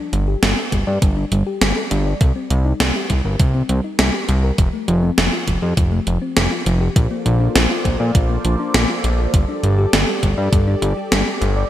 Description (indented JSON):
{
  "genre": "synthwave",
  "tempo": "101 BPM",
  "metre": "4/4",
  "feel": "straight",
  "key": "G minor",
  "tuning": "A4 = 440 Hz",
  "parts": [
    { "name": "thumb-piano-like synth pluck", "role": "arpeggios", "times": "0.0-11.7 s", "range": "F3 to D5", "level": "-25 LUFS", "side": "left 2 dB", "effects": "chorus, digital delay" },
    { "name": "fat analog bass", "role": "bass", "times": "0.1-11.6 s", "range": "F1 to Bb2", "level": "-18 LUFS", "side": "equal", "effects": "tube saturation, sidechain pumping" },
    { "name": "gated 80s digital drum machine", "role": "drums", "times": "0.1-11.5 s", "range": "hi-hat, snare drum", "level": "-20 LUFS", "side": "equal", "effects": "gated reverb, gated reverb snare" },
    { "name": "electronic kick drum", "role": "drums", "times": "0.7-10.6 s", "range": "none", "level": "-17 LUFS", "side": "equal", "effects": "none" },
    { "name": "phased analog pad", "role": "sustained chords", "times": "7.0-11.7 s", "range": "Bb3 to D5", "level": "-24 LUFS", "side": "equal", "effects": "phaser, chorus, sidechain pumping" }
  ],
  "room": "light reverb, digital ambience",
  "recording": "bright 1980s-style digital production",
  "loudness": "-15 LUFS",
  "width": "side -12 dB against mid",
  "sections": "0.0-11.7 A section",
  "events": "filter sweep on synth arpeggio sound 0.0-11.7",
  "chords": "0.0 N.C.; 2.2 C5; 4.6 N.C.; 7.0 Bbmaj7; 9.3 Gsus2",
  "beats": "0.43 1.02 1.61 | 2.21 2.80 3.40 3.99 | 4.58 5.18 5.77 6.37 | 6.96 7.55 8.15 8.74 | 9.34 9.93 10.53 11.12"
}